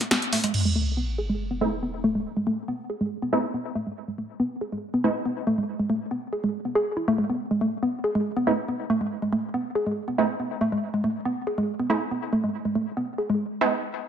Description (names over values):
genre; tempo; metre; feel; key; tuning
driving peak-time techno; 140 BPM; 4/4; straight; G# phrygian; A4 = 445 Hz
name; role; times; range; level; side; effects
punchy analog drum machine; drums; 0.0-0.6 s; crash cymbal, hi-hat, snare drum; -27 LUFS; right 1 dB; none
woody wave-folded pluck; riff; 0.1-13.4 s; G#3 to G#4; -25 LUFS; equal; chorus, digital delay
breakbeat sampler-style drum kit; drums; 0.1-0.5 s; hi-hat, snare drum, tambourine; -32 LUFS; right 1 dB; high-pass filter on perc, high-pass filter on snare, high-pass filter on hats, high-pass filter on room
sub drop; sound effects; 0.5-2.3 s; none; -28 LUFS; equal; none
rave stab; stabs; 1.6-5.1, 8.5-13.7 s; G#3 to D#4; -26 LUFS; right 3 dB; chorus, built-in reverb, ping-pong delay
room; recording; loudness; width
moderate digital room reverb, RT60 1.2 s; none; -24 LUFS; side -8 dB against mid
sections
0.5-14.1 A section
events
band accent 0.1; impact 0.5-2.3; filter sweep on synth arpeggio sound 0.5-14.1; filter sweep on synth stab 0.5-14.1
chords
0.0 G#m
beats
0.11 | 0.54 0.97 1.40 1.83 | 2.25 2.68 3.11 3.54 | 3.97 4.40 4.83 5.25 | 5.68 6.11 6.54 6.97 | 7.40 7.83 8.26 8.68 | 9.11 9.54 9.97 10.40 | 10.83 11.26 11.68 12.11 | 12.54 12.97 13.40